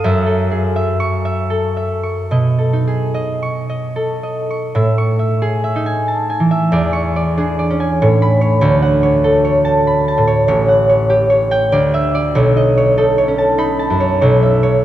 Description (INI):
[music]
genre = classical, solo harp piece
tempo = 71-99 BPM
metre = 3/4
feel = rubato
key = A lydian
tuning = A4 = 442 Hz
[part]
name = concert harp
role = solo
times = 0.0-14.8 s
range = A1 to C#6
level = -12 LUFS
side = equal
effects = none
[sound]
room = wet cathedral reverb, RT60 4.8 s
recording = dark, warm production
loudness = -13 LUFS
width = side -12 dB against mid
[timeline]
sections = 0.0-4.7 A section; 4.7-14.8 B section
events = none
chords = 0.0 F#m7; 2.3 B9; 4.7 Amaj7; 6.7 E6; 8.0 Aadd9; 8.6 Dmaj7; 10.5 A6; 11.7 Dadd9; 12.4 B9; 14.2 Esus2/B